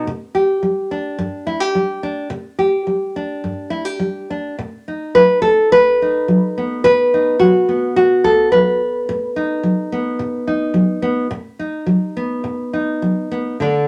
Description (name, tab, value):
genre	folk, solo fingerstyle acoustic guitar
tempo	107 BPM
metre	4/4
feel	straight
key	unclear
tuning	A4 = 437 Hz
part	nylon-string guitar	solo	0.0-13.9 s	G2 to B4	-17 LUFS	equal	none
room	moderate studio ambience, RT60 0.5 s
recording	none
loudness	-17 LUFS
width	mono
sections	0.0-13.6 A section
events	none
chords	0.1 Csus2; 4.6 B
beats	| 0.08 0.63 1.19 1.74 | 2.31 2.87 3.43 4.00 | 4.58 5.15 5.71 6.28 | 6.84 7.40 7.96 8.52 | 9.07 9.62 10.18 10.74 | 11.30 11.86 12.42 13.01 | 13.59